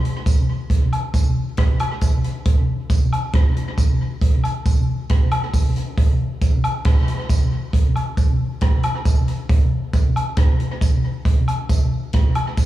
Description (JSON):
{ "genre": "reggae", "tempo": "68 BPM", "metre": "4/4", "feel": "straight", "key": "none", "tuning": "none", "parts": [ { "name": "vintage drum kit", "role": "drums", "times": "0.0-12.7 s", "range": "hi-hat, kick drum, rim click", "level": "-17 LUFS", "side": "right 1 dB", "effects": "none" }, { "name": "tambourine and woodblock", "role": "percussion", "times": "0.3-12.7 s", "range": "none", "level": "-28 LUFS", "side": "left 1 dB", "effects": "slapback echo" } ], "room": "little or no reverb", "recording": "live gig heard through the venue's PA, club reverb, small room ambience", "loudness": "-17 LUFS", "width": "side -14 dB against mid", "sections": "0.0-12.7 A section", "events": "none", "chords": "none" }